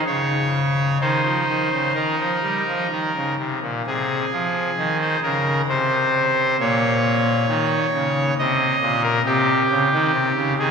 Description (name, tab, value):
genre	classical, chorale-style piece for pipe organ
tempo	62-69 BPM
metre	3/4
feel	rubato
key	Ab major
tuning	A4 = 441 Hz
part	pipe organ, trumpet	solo	0.0-10.7 s	Bb2 to Eb5	-18 LUFS	equal	none
room	wet cathedral reverb, RT60 4.7 s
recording	recorded in a church or concert hall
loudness	-18 LUFS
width	side -6 dB against mid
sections	0.0-3.9 A section; 3.9-10.7 B section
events	none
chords	0.1 N.C.; 1.0 Eb5; 3.9 Ab/C; 5.7 N.C.; 6.6 Eb5/Bb; 9.3 Cm